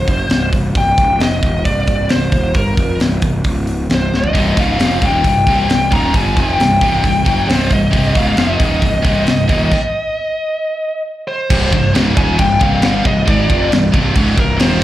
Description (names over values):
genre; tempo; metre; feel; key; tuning
heavy metal; 134 BPM; 4/4; straight; C minor; A4 = 445 Hz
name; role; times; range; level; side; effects
high-gain lead guitar; melody; 0.0-14.8 s; Bb4 to Bb5; -18 LUFS; left 1 dB; distortion, digital delay
fuzz picked electric bass; bass; 0.0-14.8 s; C1 to Ab1; -16 LUFS; equal; overdrive
tight metal drum kit; drums; 0.1-14.7 s; crash cymbal, hi-hat, kick drum, snare drum, toms; -16 LUFS; equal; none
heavy high-gain guitar; riff; 4.3-14.8 s; C2 to Ab3; -18 LUFS; equal; distortion
room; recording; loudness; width
studio reverb; live gig heard through the venue's PA, club reverb; -12 LUFS; side -14 dB against mid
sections
0.0-11.5 A section; 11.5-14.8 B section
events
drum fill 4.1; stop 9.7-11.5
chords
0.0 Cm; 3.5 N.C.; 3.9 Cm; 10.6 N.C.; 11.5 Cm